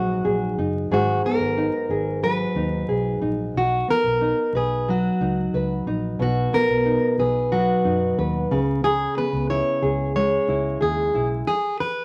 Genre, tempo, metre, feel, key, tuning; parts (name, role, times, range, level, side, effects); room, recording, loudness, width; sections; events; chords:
pop; 91 BPM; 4/4; straight; B major; A4 = 438 Hz
fingerpicked plugged-in steel-string acoustic guitar; melody; 0.0-12.0 s; F#4 to C#5; -26 LUFS; equal
nylon-string guitar; accompaniment; 0.0-12.0 s; G#2 to B4; -25 LUFS; equal
vintage muted fingered electric bass; bass; 0.0-11.4 s; F#1 to F#2; -30 LUFS; equal
moderate studio reverb, RT60 0.6 s; vinyl crackle; -22 LUFS; mono
0.0-12.0 A section
0.0 G#m7; 3.5 B; 8.5 C#m7